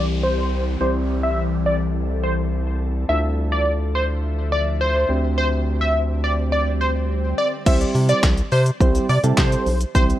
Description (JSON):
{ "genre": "dance-pop", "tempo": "105 BPM", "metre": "4/4", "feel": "straight", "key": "C major", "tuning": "A4 = 438 Hz", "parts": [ { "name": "plucky unison lead", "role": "melody", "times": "0.0-10.0 s", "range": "C5 to E5", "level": "-23 LUFS", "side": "equal", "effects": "sidechain pumping, low-pass filter, ping-pong delay" }, { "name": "soft electric-piano-like synth keys", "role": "accompaniment", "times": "0.0-10.2 s", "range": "G3 to D5", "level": "-27 LUFS", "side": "right 2 dB", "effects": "chorus, low-pass filter" }, { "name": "ethereal airy pad", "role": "sustained chords", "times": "0.0-7.6 s", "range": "D3 to E5", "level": "-29 LUFS", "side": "left 3 dB", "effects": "ensemble chorus, built-in reverb, phaser, sidechain pumping, low-pass filter" }, { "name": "round analog bass", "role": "bass", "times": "0.0-10.1 s", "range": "B1 to C3", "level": "-21 LUFS", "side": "equal", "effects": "sidechain pumping" }, { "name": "downlifter and swell", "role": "sound effects", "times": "0.0-7.7 s", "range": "none", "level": "-37 LUFS", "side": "left 1 dB", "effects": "none" }, { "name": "pop drum kit", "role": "drums", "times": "7.7-10.2 s", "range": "crash cymbal, handclaps, hi-hat, kick drum, shaker, snare drum", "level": "-19 LUFS", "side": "equal", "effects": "none" } ], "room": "digital ambience", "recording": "worn, warbling old tape, cassette tape, warbly pitch drift", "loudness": "-18 LUFS", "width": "side -13 dB against mid", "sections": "0.0-7.7 A section; 7.7-10.2 B section", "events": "filter sweep 0.0-7.7; swell 6.4-7.7; drop 7.7-10.2", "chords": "0.0 C; 3.1 Dmadd9; 5.1 Gsus4/D; 7.7 C" }